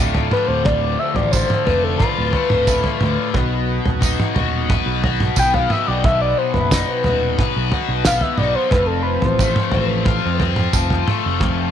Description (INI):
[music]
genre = psychedelic rock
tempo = 89 BPM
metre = 4/4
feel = straight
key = unclear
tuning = A4 = 440 Hz
[part]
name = combo organ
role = sustained chords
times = 0.0-11.7 s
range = F3 to F#4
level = -28 LUFS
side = right 16 dB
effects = wide subtle chorus
[part]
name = cranked stack guitar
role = riff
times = 0.0-11.7 s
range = D2 to B4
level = -22 LUFS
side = left 14 dB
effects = overdrive, flanger
[part]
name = picked electric bass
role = bass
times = 0.0-11.7 s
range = D1 to F2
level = -22 LUFS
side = right 2 dB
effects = none
[part]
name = cloth-damped thuddy drum kit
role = drums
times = 0.1-11.6 s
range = kick drum, snare drum, toms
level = -19 LUFS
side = right 1 dB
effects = none
[part]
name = overdriven synth lead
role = melody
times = 0.3-10.2 s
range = A4 to G5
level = -21 LUFS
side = left 1 dB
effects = chorus, tape echo
[part]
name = tambourine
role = percussion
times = 1.3-10.9 s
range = none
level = -28 LUFS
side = right 16 dB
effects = none
[sound]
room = light reverb, small room reverb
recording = 1960s-style stereo with parts hard left and right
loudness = -16 LUFS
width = side -9 dB against mid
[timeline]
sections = 0.0-11.7 A section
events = analog synth lead solo 0.0-11.7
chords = 0.0 Dm; 3.4 B; 8.7 F